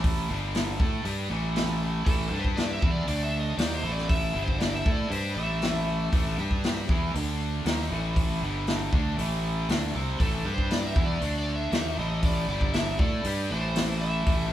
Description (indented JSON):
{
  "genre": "blues rock power trio and southern rock",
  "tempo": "118 BPM",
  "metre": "4/4",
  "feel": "straight",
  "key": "A minor",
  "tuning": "A4 = 441 Hz",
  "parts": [
    { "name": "distorted electric guitar", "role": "riff", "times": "0.0-14.5 s", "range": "G2 to A4", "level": "-31 LUFS", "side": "equal", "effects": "overdrive" },
    { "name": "fuzz fingered electric bass", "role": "bass", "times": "0.0-14.5 s", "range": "G1 to A2", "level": "-30 LUFS", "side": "equal", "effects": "overdrive" },
    { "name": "vintage drum kit", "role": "drums", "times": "0.0-14.4 s", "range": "hi-hat, kick drum, snare drum", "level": "-28 LUFS", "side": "equal", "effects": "none" },
    { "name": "overdriven slide guitar", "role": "melody", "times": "2.1-6.8, 10.2-14.5 s", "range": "A4 to E5", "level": "-33 LUFS", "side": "equal", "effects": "none" }
  ],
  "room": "moderate stone room reverb, RT60 1.0 s",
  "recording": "band playing live in one room",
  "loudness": "-24 LUFS",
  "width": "side -12 dB against mid",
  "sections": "0.0-14.5 A section",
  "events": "none",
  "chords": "0.3 G5; 0.8 A5; 2.3 G5; 2.8 Bmadd11/E; 3.1 D5; 3.6 A5; 4.4 G5; 4.9 A5; 6.4 G5; 6.9 E5; 7.1 D5; 7.7 A5; 8.4 G5; 8.9 Am; 10.5 G5; 11.0 Bmadd11/E; 11.2 D5; 11.7 A5; 12.5 G5; 13.0 Am"
}